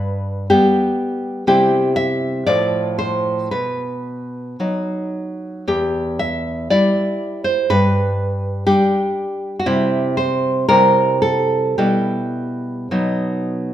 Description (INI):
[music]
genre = romantic piece for solo classical guitar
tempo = 52-62 BPM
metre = 2/4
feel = rubato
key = E minor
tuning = A4 = 440 Hz
[part]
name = nylon-string guitar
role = solo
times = 0.0-13.7 s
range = E2 to E5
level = -16 LUFS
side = equal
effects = none
[sound]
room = moderate recital hall reverb, RT60 1.5 s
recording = minimal, uncompressed stereo recording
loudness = -16 LUFS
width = side -11 dB against mid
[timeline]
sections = 0.0-13.7 A section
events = none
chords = 0.0 G; 1.5 C; 2.5 F/A; 3.5 B; 5.7 Em; 7.7 G; 9.7 C; 10.7 C7; 11.8 Em/B; 12.9 B